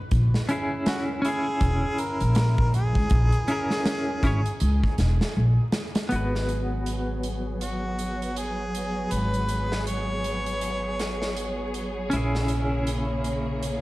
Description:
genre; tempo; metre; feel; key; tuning
trip hop; 80 BPM; 4/4; swing 60% on 16ths; G# minor; A4 = 443 Hz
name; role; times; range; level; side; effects
upright bass; bass; 0.1-13.8 s; E1 to C#2; -25 LUFS; equal; none
big rock drum kit; drums; 0.1-13.8 s; hi-hat, kick drum, snare drum; -29 LUFS; equal; high-pass filter on kick, high-pass filter on hats, high-pass filter on snare, high-pass filter on room
semi-hollow electric guitar; accompaniment; 0.5-13.8 s; B3 to C#5; -29 LUFS; equal; tremolo, low-pass filter
warm harmonica; melody; 0.9-11.7 s; F#4 to C#5; -32 LUFS; equal; tape echo
bright studio string section; sustained chords; 6.1-13.8 s; C#3 to G#4; -32 LUFS; equal; low-pass filter
wind-like tuned noise texture; texture; 6.7-13.8 s; C#5; -38 LUFS; right 2 dB; built-in reverb
room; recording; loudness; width
small room ambience; dark, warm production, vinyl crackle; -23 LUFS; side -19 dB against mid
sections
0.0-6.1 A section; 6.1-13.8 B section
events
filter sweep on clean electric guitar 0.0-6.1, 6.1-13.8; filter sweep on string section 6.1-13.8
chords
0.1 A#m7b5; 6.1 G#m7; 12.1 A#m7b5

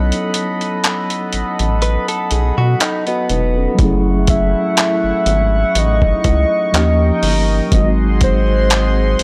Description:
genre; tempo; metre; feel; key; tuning
contemporary R&B; 61 BPM; 4/4; swing 54% on 16ths; F# dorian; A4 = 440 Hz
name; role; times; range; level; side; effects
mellow tine electric piano; accompaniment; 0.0-9.2 s; E#3 to F#5; -23 LUFS; equal; none
chorused pulse-width pad; sustained chords; 0.0-9.2 s; A3 to C#6; -25 LUFS; equal; sidechain pumping
rubbery square bass; bass; 0.0-9.2 s; E1 to B2; -18 LUFS; equal; none
dusty soul sampler-style drum kit; drums; 0.1-9.2 s; handclaps, hi-hat, kick drum; -20 LUFS; equal; none
direct-recorded clean electric guitar; arpeggios; 1.8-3.8 s; B3 to B4; -25 LUFS; equal; tape echo
soft octave-layered synth lead; melody; 4.3-9.2 s; B#4 to E5; -20 LUFS; equal; chorus
room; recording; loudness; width
little or no reverb; dry, gritty hardware recording; -15 LUFS; mono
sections
0.0-3.8 A section; 3.8-9.2 B section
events
break 0.0-3.8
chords
0.0 B7; 3.8 F#m7; 6.7 D#7; 7.7 G#7

